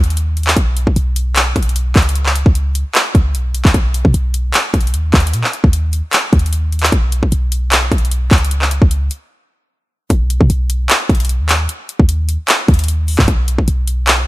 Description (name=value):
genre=hip hop, trap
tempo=151 BPM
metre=4/4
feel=half-time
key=B major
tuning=A4 = 440 Hz
part: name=clean 808-style bass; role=bass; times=0.0-14.2 s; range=B1 to B2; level=-15 LUFS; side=equal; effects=none
part: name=trap drum kit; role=drums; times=0.0-14.2 s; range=handclaps, hi-hat, kick drum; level=-13 LUFS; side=equal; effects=none
room=digital ambience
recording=none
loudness=-12 LUFS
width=side -18 dB against mid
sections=0.0-10.1 A section; 10.1-14.3 B section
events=break 9.3-10.1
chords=none